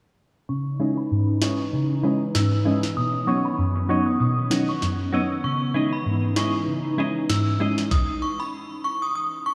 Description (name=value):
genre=dancehall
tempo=97 BPM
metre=4/4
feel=swing 56% on 16ths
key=C# minor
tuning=A4 = 440 Hz
part: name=synth chime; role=melody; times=0.5-9.5 s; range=B5 to E6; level=-32 LUFS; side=equal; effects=ensemble chorus, phaser, low-pass filter, diffuse ambient delay
part: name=deep mellow chord stab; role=accompaniment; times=0.5-7.8 s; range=F#2 to D#4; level=-26 LUFS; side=equal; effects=chorus, low-pass filter
part: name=glassy FM pad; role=sustained chords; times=0.7-7.9 s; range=D#3 to D#4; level=-31 LUFS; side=equal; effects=ensemble chorus, built-in reverb, phaser, sidechain pumping, low-pass filter
part: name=clean electric guitar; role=arpeggios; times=0.8-7.8 s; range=E4 to D#5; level=-37 LUFS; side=equal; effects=lush chorus, low-pass filter, diffuse ambient delay
part: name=island pop drum kit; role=drums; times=1.4-8.1 s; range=kick drum, snare drum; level=-30 LUFS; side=equal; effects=none
room=wet lush hall reverb, RT60 2.5 s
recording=dreamy mix soaked in reverb, small room ambience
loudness=-24 LUFS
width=mono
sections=0.5-9.5 A section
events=filter sweep 0.5-9.5; stop 7.9-9.5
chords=0.5 C#madd9; 3.0 Badd9; 5.4 C#madd9; 7.9 N.C.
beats=| 0.49 1.11 1.73 2.35 | 2.96 3.58 4.20 4.82 | 5.44 6.06 6.68 7.29 | 7.91 8.53 9.15